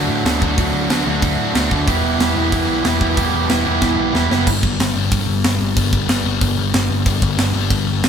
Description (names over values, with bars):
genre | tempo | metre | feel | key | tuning
punk rock | 185 BPM | 4/4 | straight | G major | A4 = 436 Hz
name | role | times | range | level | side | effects
raw garage guitar | riff | 0.0-4.5 s | D3 to G4 | -19 LUFS | right 6 dB | overdrive
sludgy distorted guitar | riff | 0.0-8.1 s | G2 to E4 | -21 LUFS | left 8 dB | overdrive
overdriven picked electric bass | bass | 0.0-8.1 s | E1 to A2 | -21 LUFS | equal | none
tight metal drum kit | drums | 0.3-8.1 s | crash cymbal, hi-hat, kick drum, snare drum | -20 LUFS | right 1 dB | none
room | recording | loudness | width
light reverb | band playing live in one room | -15 LUFS | side -7 dB against mid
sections
0.0-4.5 A section; 4.5-8.1 B section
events
drum fill 3.8-4.5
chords
0.0 D; 1.9 Em; 4.5 G